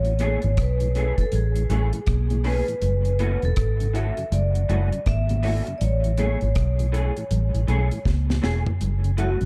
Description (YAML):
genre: roots reggae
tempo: 80 BPM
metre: 4/4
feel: swing 62% on 16ths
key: unclear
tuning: A4 = 440 Hz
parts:
  - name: vibraphone with medium mallets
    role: melody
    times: 0.0-9.5 s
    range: F#4 to E5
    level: -32 LUFS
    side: equal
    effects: tape echo
  - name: vintage muted fingered electric bass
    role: bass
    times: 0.0-9.5 s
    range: E1 to C#2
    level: -24 LUFS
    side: equal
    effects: none
  - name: deep reggae drum kit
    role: drums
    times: 0.0-9.5 s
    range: hi-hat, kick drum, rim click, snare drum, toms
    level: -29 LUFS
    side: equal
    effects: none
  - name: mellow tonewheel organ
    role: accompaniment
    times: 0.1-9.5 s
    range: F#2 to G#4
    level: -37 LUFS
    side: equal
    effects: slow rotary speaker, tape echo
  - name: electric guitar through a small old amp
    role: accompaniment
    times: 0.2-9.4 s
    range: E3 to G#4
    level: -36 LUFS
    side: equal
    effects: ensemble chorus, tape echo
  - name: congas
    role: percussion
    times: 0.2-9.4 s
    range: none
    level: -36 LUFS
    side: equal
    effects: none
room: small room reverb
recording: dark, warm production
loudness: -23 LUFS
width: mono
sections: 0.0-8.8 A section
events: drum fill 8.1-8.8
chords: 0.0 Amaj7; 2.8 F#m7; 5.8 Amaj7; 8.8 F#m7